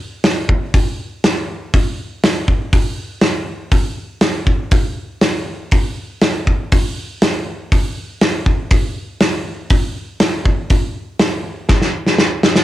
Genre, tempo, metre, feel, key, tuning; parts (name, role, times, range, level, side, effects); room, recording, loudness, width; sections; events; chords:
rock; 120 BPM; 4/4; straight
loose indie drum kit; drums; 0.2-12.6 s; hi-hat, kick drum, snare drum; -14 LUFS; equal; cassette tape
light reverb; home recording on cassette; -15 LUFS; side -14 dB against mid
0.0-12.6 A section
drum fill 11.7-12.6